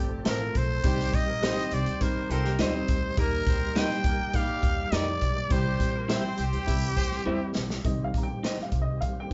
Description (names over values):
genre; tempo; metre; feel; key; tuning
uptempo 1960s-style soul; 103 BPM; 4/4; straight; C dorian; A4 = 440 Hz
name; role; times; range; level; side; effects
mellow horn section; second line; 0.0-7.2 s; G3 to E5; -39 LUFS; equal; none
dark upright piano; accompaniment; 0.0-9.3 s; Eb3 to Bb5; -37 LUFS; equal; none
tonewheel organ; sustained chords; 0.0-9.3 s; Eb3 to A4; -39 LUFS; equal; fast rotary speaker, chorus vibrato
upright bass; bass; 0.0-9.3 s; G1 to F2; -34 LUFS; equal; none
growling trumpet; melody; 0.3-7.5 s; G4 to G5; -34 LUFS; equal; none
electric guitar through a small old amp; stabs; 0.3-8.6 s; Eb4 to F5; -35 LUFS; equal; none
natural country drum kit; drums; 0.3-9.3 s; hi-hat, kick drum, snare drum; -31 LUFS; equal; none
vintage hollow-body jazz guitar; riff; 2.3-3.2 s; C4 to A4; -38 LUFS; equal; none
room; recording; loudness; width
moderate studio reverb, RT60 0.5 s; band playing live in one room, nothing above 7.7 kHz; -27 LUFS; mono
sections
0.0-7.8 A section; 7.8-9.3 B section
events
drum fill 7.3-7.8; upright piano solo 7.8-9.3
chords
0.0 F; 0.8 Cm; 3.2 Eb; 5.5 C; 7.8 Cm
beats
0.26 | 0.84 1.42 2.01 2.59 | 3.17 3.76 4.34 4.92 | 5.51 6.09 6.68 7.26 | 7.85 8.43 9.02